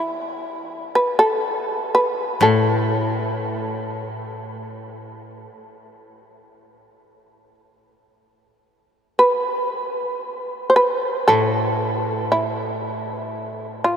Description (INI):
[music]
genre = japanese traditional, Japanese chamber music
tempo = 54-62 BPM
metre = 4/4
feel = rubato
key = A hirajoshi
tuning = A4 = 440 Hz
[part]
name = shamisen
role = melody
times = 0.0-14.0 s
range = E4 to C5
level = -20 LUFS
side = equal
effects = none
[part]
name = koto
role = accompaniment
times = 2.4-14.0 s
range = A2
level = -24 LUFS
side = left 1 dB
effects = none
[sound]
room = wet huge ambient reverb, RT60 8.2 s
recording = in a vast, echoing space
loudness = -19 LUFS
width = side -8 dB against mid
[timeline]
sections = 0.0-8.7 A section; 8.7-14.0 B section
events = none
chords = none